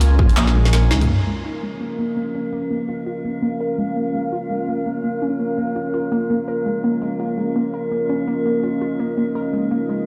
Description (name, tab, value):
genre	half-time drum and bass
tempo	167 BPM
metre	4/4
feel	swing 59% on 16ths, half-time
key	Bb minor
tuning	A4 = 439 Hz
part	deep dark ambient pad	sustained chords	0.0-10.1 s	Db4 to Ab5	-27 LUFS	equal	chorus, built-in reverb, sidechain pumping
part	warbly dusty pluck	arpeggios	0.0-10.1 s	Ab3 to Bb4	-26 LUFS	equal	chorus, phaser, digital delay
part	dark detuned saw bass	bass	0.0-1.1 s	Bb1 to Db2	-17 LUFS	equal	none
part	drum and bass drum kit	drums	0.0-1.1 s	handclaps, hi-hat, snare drum, toms	-25 LUFS	equal	overdrive, low-pass filter on hats, low-pass filter on snare, low-pass filter on toms
part	metallic inharmonic drone	texture	1.5-10.1 s	Bb3	-30 LUFS	equal	chorus, built-in reverb
room	moderate huge ambient reverb, RT60 4.1 s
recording	played on a big sound system in a bare room, large studio reverb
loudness	-21 LUFS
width	mono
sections	0.0-1.1 A section; 1.1-10.1 B section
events	drop 0.0-1.1; drum fill 0.4-1.1; band accent 0.9; filter sweep on synth pluck 1.1-10.1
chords	0.0 Bbm